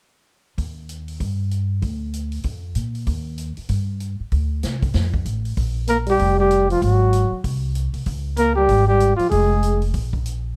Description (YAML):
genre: jazz, small-group swing and bop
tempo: 192 BPM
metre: 4/4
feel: swing 61% on 8ths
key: unclear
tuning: A4 = 440 Hz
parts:
  - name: upright bass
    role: bass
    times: 0.6-10.5 s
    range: F1 to C3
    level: -24 LUFS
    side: equal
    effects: none
  - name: swinging big-band drum kit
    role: drums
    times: 0.6-10.3 s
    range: hi-hat, kick drum, snare drum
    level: -30 LUFS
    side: equal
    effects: none
  - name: breathy trumpet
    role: melody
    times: 5.9-9.9 s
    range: F4 to Bb4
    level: -21 LUFS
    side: equal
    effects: plate reverb
  - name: growling trombone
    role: second line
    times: 5.9-9.9 s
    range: F3 to Bb3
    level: -24 LUFS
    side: equal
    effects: none
room: little or no reverb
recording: dark, warm production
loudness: -21 LUFS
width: mono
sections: 0.6-5.6 A section; 5.6-10.6 B section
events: none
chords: 0.6 N.C.; 2.5 Fsus4; 3.1 N.C.; 4.3 Csus2/D; 5.0 F; 5.6 Bb5; 6.8 Ab7; 8.1 Db5; 9.3 Fm; 9.9 N.C.